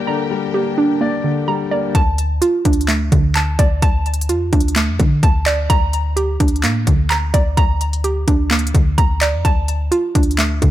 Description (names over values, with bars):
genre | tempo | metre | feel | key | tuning
hip hop, trap | 128 BPM | 4/4 | half-time | D minor | A4 = 440 Hz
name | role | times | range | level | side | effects
dark grand piano | accompaniment | 0.0-2.0 s | D3 to D5 | -20 LUFS | left 6 dB | low-pass filter
rich symphonic string section | sustained chords | 0.0-1.9 s | D4 to G5 | -30 LUFS | left 5 dB | low-pass filter
hollow square pluck | arpeggios | 0.0-10.7 s | D3 to Bb5 | -19 LUFS | right 4 dB | chorus, low-pass filter, ping-pong delay
clean 808-style bass | bass | 1.9-10.7 s | D2 to D3 | -18 LUFS | left 1 dB | none
trap drum kit | drums | 1.9-10.7 s | handclaps, hi-hat, kick drum | -17 LUFS | left 1 dB | none
room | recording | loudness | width
digital ambience | none | -14 LUFS | side -13 dB against mid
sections
0.0-1.9 A section; 1.9-10.7 B section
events
none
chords
0.0 Gm/D; 1.9 Dm; 5.7 Gm/D; 9.4 Dm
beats
| 0.07 0.54 1.01 1.48 | 1.95 2.42 2.89 3.35 | 3.82 4.29 4.76 5.23 | 5.70 6.17 6.64 7.11 | 7.57 8.04 8.51 8.98 | 9.45 9.92 10.39